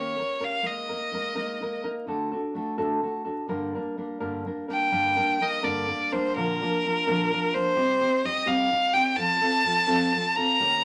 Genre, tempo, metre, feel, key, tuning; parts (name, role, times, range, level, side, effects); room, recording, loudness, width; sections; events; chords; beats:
mexican folk; 84 BPM (dotted quarters); 6/8; straight; G minor; A4 = 440 Hz
bright violin; melody; 0.0-1.8, 4.7-10.8 s; Bb4 to Bb5; -26 LUFS; equal
nylon-string guitar; accompaniment; 0.0-10.8 s; G2 to Bb4; -31 LUFS; equal
wet studio ambience, RT60 0.5 s; vinyl crackle; -26 LUFS; mono
0.0-4.9 A section; 4.9-10.8 A section
0.0 Eb7; 0.6 Absus2; 2.1 D; 3.5 Gm; 6.4 Bb; 7.8 Cm; 9.2 F
| 0.65 1.36 | 2.07 2.78 | 3.49 4.20 | 4.92 5.64 | 6.35 7.06 | 7.76 8.46 | 9.16 9.87 | 10.59